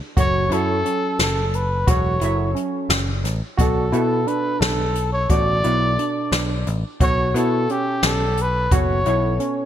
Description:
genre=progressive instrumental, band music in an uneven meter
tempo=176 BPM (eighths)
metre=5/8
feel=straight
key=B minor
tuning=A4 = 440 Hz
part: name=mellow trumpet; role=melody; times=0.2-9.7 s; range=G4 to D5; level=-23 LUFS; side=left 1 dB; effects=digital delay
part: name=hollow-body jazz guitar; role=accompaniment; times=0.2-9.7 s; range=B2 to E5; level=-28 LUFS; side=left 1 dB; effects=double-tracked left and right
part: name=barky tine electric piano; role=arpeggios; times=0.2-9.7 s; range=C#4 to F#4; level=-27 LUFS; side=right 5 dB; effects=none
part: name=picked electric bass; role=bass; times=0.2-9.4 s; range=E1 to B2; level=-22 LUFS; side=equal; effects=none
part: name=jazz brush drum kit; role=drums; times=0.2-9.6 s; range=hi-hat, kick drum, snare drum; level=-22 LUFS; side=equal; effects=gated reverb
room=light reverb, small room ambience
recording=bright 1980s-style digital production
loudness=-18 LUFS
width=side -10 dB against mid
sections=0.0-9.7 A section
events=none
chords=0.2 F#m; 3.6 Bm7; 7.0 A/B

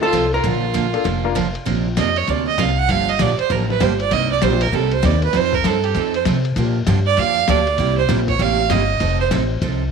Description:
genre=country, western swing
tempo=196 BPM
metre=4/4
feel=swing 63% on 8ths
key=Bb major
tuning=A4 = 440 Hz
part: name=vintage hollow-body jazz guitar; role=melody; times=0.0-1.5 s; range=A4 to Bb4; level=-22 LUFS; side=left 2 dB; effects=none
part: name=clear fiddle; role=second line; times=0.0-9.3 s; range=F4 to Gb5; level=-20 LUFS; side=right 10 dB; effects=none
part: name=bright upright piano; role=accompaniment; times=0.0-1.3 s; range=Bb3 to Bb4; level=-24 LUFS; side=left 14 dB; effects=none
part: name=picked steel-string acoustic guitar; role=accompaniment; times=0.0-9.8 s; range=C3 to Bb4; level=-23 LUFS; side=right 11 dB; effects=none
part: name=upright bass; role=bass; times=0.0-9.9 s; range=F1 to C3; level=-20 LUFS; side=left 2 dB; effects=none
part: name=lo-fi sampler-style drum kit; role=drums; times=0.1-9.7 s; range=hi-hat, kick drum, ride cymbal, snare drum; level=-26 LUFS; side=left 7 dB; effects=overdrive
room=light reverb, studio reverb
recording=1960s-style stereo with parts hard left and right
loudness=-16 LUFS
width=side -6 dB against mid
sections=0.0-1.7 A section; 1.7-9.9 B section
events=fiddle solo 1.7-9.9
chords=0.4 Bbmaj7; 1.7 Bbadd9; 2.9 Gm7; 4.1 Cm7; 5.3 F7; 6.6 Bb6; 7.8 C7; 9.0 F7

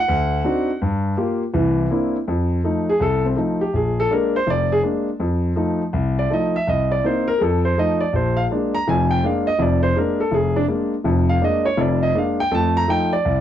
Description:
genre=solo jazz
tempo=164 BPM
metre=4/4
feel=swing 63% on 8ths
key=unclear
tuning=A4 = 441 Hz
part: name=warm concert grand piano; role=solo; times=0.0-13.4 s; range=F1 to Bb5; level=-17 LUFS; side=equal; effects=none
room=light reverb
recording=worn, warbling old tape, cassette tape, warbly pitch drift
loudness=-17 LUFS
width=side -10 dB against mid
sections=0.0-2.3 A section; 2.3-13.4 A section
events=grand piano solo 0.0-2.3, 2.3-13.4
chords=0.1 D7b9; 0.8 Gm7; 1.5 C9; 2.3 F7; 3.7 Bb7; 5.2 F7; 6.7 Cm7; 7.4 F7; 8.1 Bb7; 12.5 F7

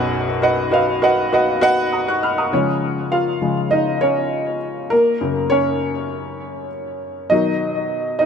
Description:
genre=pop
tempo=100 BPM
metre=4/4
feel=straight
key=unclear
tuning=A4 = 440 Hz
part: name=warm upright piano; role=solo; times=0.0-8.3 s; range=B1 to F#6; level=-17 LUFS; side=equal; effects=ping-pong delay
room=moderate plate reverb, RT60 3.4 s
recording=none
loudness=-16 LUFS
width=side -7 dB against mid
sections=0.0-2.5 A section; 2.5-8.3 B section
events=upright piano solo 2.5-8.3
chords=0.0 B; 2.5 C#; 4.9 F#; 7.3 B

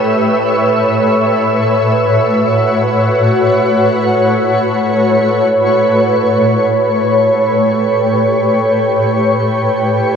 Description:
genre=ambient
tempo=free time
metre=none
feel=none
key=A mixolydian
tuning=A4 = 440 Hz
part: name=shimmering ambient pad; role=sustained chords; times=0.0-10.2 s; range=A2 to C#5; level=-11 LUFS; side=equal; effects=chorus, built-in reverb
part: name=wind-like tuned noise texture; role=texture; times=0.0-5.8 s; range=E5 to E6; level=-22 LUFS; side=left 1 dB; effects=built-in reverb
room=wet huge ambient reverb, RT60 7.0 s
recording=worn, warbling old tape, cassette tape, warbly pitch drift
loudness=-10 LUFS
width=side -6 dB against mid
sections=0.0-5.8 A section; 5.8-10.2 B section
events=none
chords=0.4 Bsus2/A; 5.8 A7

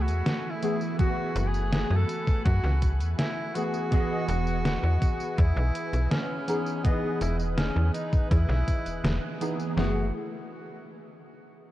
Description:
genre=vaporwave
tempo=82 BPM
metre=4/4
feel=straight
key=F# dorian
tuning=A4 = 441 Hz
part: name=warm tenor saxophone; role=melody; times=0.0-10.1 s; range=B3 to A4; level=-34 LUFS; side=equal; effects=tape echo
part: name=warbly lo-fi synth keys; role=accompaniment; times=0.0-10.1 s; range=E3 to D#5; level=-32 LUFS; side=equal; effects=ensemble chorus, vintage 12-bit sampler grit, tape echo
part: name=lush unison pad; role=sustained chords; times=0.0-10.1 s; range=A3 to F#6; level=-41 LUFS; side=equal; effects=chorus, phaser
part: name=slap-like FM bass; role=bass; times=0.0-10.1 s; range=E1 to F#2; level=-25 LUFS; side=equal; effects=tube saturation
part: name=detuned 8-bit digital drum machine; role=drums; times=0.1-9.7 s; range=hi-hat, snare drum, tambourine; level=-32 LUFS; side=equal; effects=none
part: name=detuned 8-bit digital drum machine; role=drums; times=1.0-9.9 s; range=kick drum, snare drum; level=-25 LUFS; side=equal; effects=none
room=light reverb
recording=dark, warm production, cassette tape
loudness=-24 LUFS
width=side -14 dB against mid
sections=0.0-9.8 A section; 9.8-11.7 B section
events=band accent 9.0-9.4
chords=0.0 F#m11; 3.9 Emaj7; 9.8 F#m11

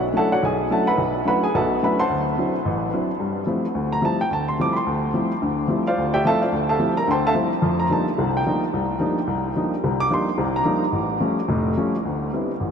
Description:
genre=jazz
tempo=217 BPM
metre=4/4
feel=swing 59% on 8ths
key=G minor from 3.2 s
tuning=A4 = 440 Hz
part: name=warm upright piano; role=solo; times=0.0-12.7 s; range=E#1 to D6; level=-19 LUFS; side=equal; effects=none
room=wet huge ambient reverb, RT60 8.7 s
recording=in a vast, echoing space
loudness=-19 LUFS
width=side -7 dB against mid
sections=0.0-3.2 A section; 3.2-12.0 A section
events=none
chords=0.0 E13sus4; 2.1 D9; 3.2 G13sus4; 7.6 F13sus4; 10.9 Aaug7; 12.0 D13sus4

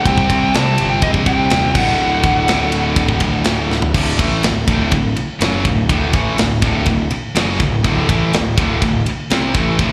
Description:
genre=heavy metal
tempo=123 BPM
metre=4/4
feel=straight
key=unclear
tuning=A4 = 444 Hz
part: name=nasal lead guitar with a parked wah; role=melody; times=0.0-3.7 s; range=Eb5 to A5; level=-21 LUFS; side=equal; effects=overdrive, slapback echo, digital delay
part: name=distorted electric guitar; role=riff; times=0.0-9.9 s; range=D2 to C4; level=-23 LUFS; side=equal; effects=overdrive, slapback echo
part: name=distorted electric guitar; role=riff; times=0.0-9.9 s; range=D2 to C4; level=-26 LUFS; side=equal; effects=none
part: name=scooped high-gain guitar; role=riff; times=0.0-9.9 s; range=D2 to C4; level=-26 LUFS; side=equal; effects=distortion, slapback echo
part: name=fuzz picked electric bass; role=bass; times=0.0-9.9 s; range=D1 to C2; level=-22 LUFS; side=equal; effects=overdrive
part: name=tight metal drum kit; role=drums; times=0.1-9.9 s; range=crash cymbal, kick drum, ride cymbal, snare drum, toms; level=-21 LUFS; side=equal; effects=none
room=light reverb, studio reverb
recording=live gig heard through the venue's PA, club reverb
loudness=-16 LUFS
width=mono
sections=0.0-3.9 A section; 3.9-9.9 B section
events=drum fill 3.7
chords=0.0 Cm; 1.8 D

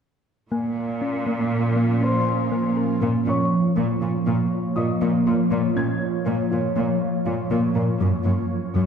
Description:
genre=cinematic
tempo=120 BPM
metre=5/4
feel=straight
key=Bb minor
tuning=A4 = 439 Hz
part: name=ethereal airy pad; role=sustained chords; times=1.4-8.9 s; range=F3 to Db5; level=-23 LUFS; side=right 1 dB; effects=ensemble chorus, built-in reverb, phaser, low-pass filter
part: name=thumb-piano-like synth pluck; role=arpeggios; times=0.5-8.9 s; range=Gb3 to Bb4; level=-26 LUFS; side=left 2 dB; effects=chorus, low-pass filter, digital delay
part: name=rich symphonic cello section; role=bass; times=0.5-8.8 s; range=Gb2 to Bb2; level=-25 LUFS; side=right 1 dB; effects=none
part: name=warm concert grand piano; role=texture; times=0.5-8.0 s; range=C5 to Ab6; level=-31 LUFS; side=left 3 dB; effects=digital delay
room=wet scoring stage reverb, RT60 1.5 s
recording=heard from further back in the room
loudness=-20 LUFS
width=side -7 dB against mid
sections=0.5-3.0 A section; 3.0-8.9 B section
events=build-up 3.0-8.9; filter sweep 3.0-8.9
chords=0.5 Bbm; 8.0 Gb

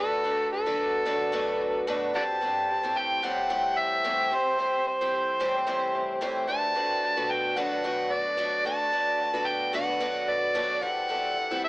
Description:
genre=pop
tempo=111 BPM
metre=4/4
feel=swing 55% on 16ths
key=unclear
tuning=A4 = 441 Hz
part: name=overdriven harmonica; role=melody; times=0.0-11.7 s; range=A4 to A5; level=-26 LUFS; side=equal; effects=tape echo
part: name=picked twelve-string acoustic guitar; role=accompaniment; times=0.0-11.7 s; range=A2 to C5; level=-29 LUFS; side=equal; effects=tape echo
room=light reverb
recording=echo-heavy mix, AM radio sound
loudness=-24 LUFS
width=side -21 dB against mid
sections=0.0-11.7 A section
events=none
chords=0.0 Bm7; 2.1 Am7; 6.5 Bm7; 10.8 Am7

